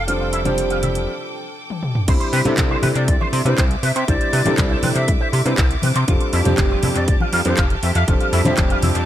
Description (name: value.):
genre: nu-disco, nu disco.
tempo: 120 BPM.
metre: 4/4.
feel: straight.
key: unclear.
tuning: A4 = 440 Hz.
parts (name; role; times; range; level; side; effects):
bright studio violin section; sustained chords; 0.0-9.1 s; C4 to D6; -30 LUFS; equal; sidechain pumping.
chorused synth bass; bass; 0.0-9.1 s; F1 to C3; -20 LUFS; equal; none.
warm grand piano; accompaniment; 0.1-9.1 s; F3 to B5; -23 LUFS; equal; analog delay.
electric guitar with an envelope filter; riff; 0.1-8.9 s; F3 to C6; -26 LUFS; right 1 dB; ensemble chorus, analog delay.
house drum kit; drums; 0.1-9.1 s; crash cymbal, handclaps, hi-hat, toms; -25 LUFS; right 1 dB; analog delay.
congas; percussion; 0.5-8.9 s; none; -25 LUFS; left 1 dB; none.
electronic kick drum; drums; 2.1-8.7 s; none; -19 LUFS; equal; none.
concert flute; melody; 3.0-9.1 s; C5 to A5; -27 LUFS; left 1 dB; analog delay.
room: light reverb, small room ambience.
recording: echo-heavy mix.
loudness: -16 LUFS.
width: side -12 dB against mid.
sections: 0.0-2.1 A section; 2.1-9.1 B section.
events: filter sweep on clean electric guitar 0.0-2.1; break 1.1-2.1; drum fill 1.7-2.1; drop 2.1-9.1.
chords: 0.0 F69; 2.1 Cmaj9; 6.1 F69.